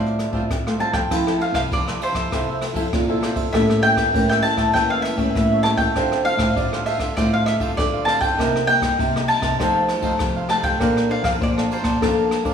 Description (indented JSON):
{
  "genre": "samba and choro",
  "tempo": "99 BPM",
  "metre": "4/4",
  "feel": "straight",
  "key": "F major",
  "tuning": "A4 = 440 Hz",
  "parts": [
    { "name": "mandolin", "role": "melody", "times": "0.0-12.3 s", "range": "C5 to A5", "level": "-22 LUFS", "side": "equal", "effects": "none" },
    { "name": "cavaquinho", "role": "accompaniment", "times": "0.0-12.5 s", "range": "D4 to A5", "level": "-29 LUFS", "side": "right 4 dB", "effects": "none" },
    { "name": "nylon-string guitar", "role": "accompaniment", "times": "0.0-12.5 s", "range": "A2 to C5", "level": "-27 LUFS", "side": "left 5 dB", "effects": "none" },
    { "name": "nylon-string guitar", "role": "bass", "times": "0.0-12.5 s", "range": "A2 to C4", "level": "-24 LUFS", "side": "equal", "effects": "none" },
    { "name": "jazz brush drum kit", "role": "drums", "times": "0.1-12.5 s", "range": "crash cymbal, hi-hat, kick drum, ride cymbal, rim click", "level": "-26 LUFS", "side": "equal", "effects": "none" },
    { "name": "felt-muted upright piano", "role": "second line", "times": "1.1-12.5 s", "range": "E4 to D5", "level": "-27 LUFS", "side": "right 3 dB", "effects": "none" }
  ],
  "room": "wet recital hall reverb, RT60 1.5 s",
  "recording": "recorded in a church or concert hall, small room ambience",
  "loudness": "-17 LUFS",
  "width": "side -7 dB against mid",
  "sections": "0.0-1.1 A section; 1.1-12.5 B section",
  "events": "none",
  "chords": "0.0 Dm7; 1.1 Fmaj7; 3.5 A7b9; 6.0 Dm7; 8.4 Cm7; 9.6 F9; 10.8 Bbmaj9"
}